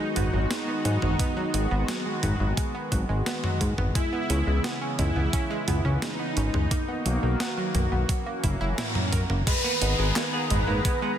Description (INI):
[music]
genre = synthwave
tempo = 87 BPM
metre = 4/4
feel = straight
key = G# minor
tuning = A4 = 441 Hz
[part]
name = soft supersaw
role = melody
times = 0.0-11.2 s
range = D#4 to B4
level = -32 LUFS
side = right 2 dB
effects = digital delay
[part]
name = chorused pulse-width pad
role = sustained chords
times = 0.0-11.2 s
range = C#3 to A#5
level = -32 LUFS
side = left 1 dB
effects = sidechain pumping
[part]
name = analog pluck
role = arpeggios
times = 0.0-11.1 s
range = F#3 to A#4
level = -34 LUFS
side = right 4 dB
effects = chorus, tape echo
[part]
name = fat analog bass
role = bass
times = 0.2-10.8 s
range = F#1 to G#2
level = -25 LUFS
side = equal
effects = sidechain pumping
[part]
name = clean 12-bit digital drum machine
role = drums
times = 0.2-11.0 s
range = crash cymbal, handclaps, hi-hat, snare drum, toms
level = -30 LUFS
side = equal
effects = studio reverb, soft clipping on snare
[part]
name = electronic kick drum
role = drums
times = 1.2-11.0 s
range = none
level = -28 LUFS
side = equal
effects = studio reverb
[part]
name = clean electric guitar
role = riff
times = 9.5-11.1 s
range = G#3 to G#4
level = -34 LUFS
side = equal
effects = wide subtle chorus, vintage 12-bit sampler grit, tape echo
[part]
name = downlifter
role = sound effects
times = 9.5-11.2 s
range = none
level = -29 LUFS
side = left 1 dB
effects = none
[sound]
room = light reverb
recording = dense, heavily limited modern master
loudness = -23 LUFS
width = side -10 dB against mid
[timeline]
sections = 0.0-9.5 A section; 9.5-11.2 B section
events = drum fill 8.4-9.5; band accent 8.8-9.1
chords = 0.0 G#m7; 4.0 C#m7; 6.7 Bmaj7; 8.1 F#7; 9.5 G#madd9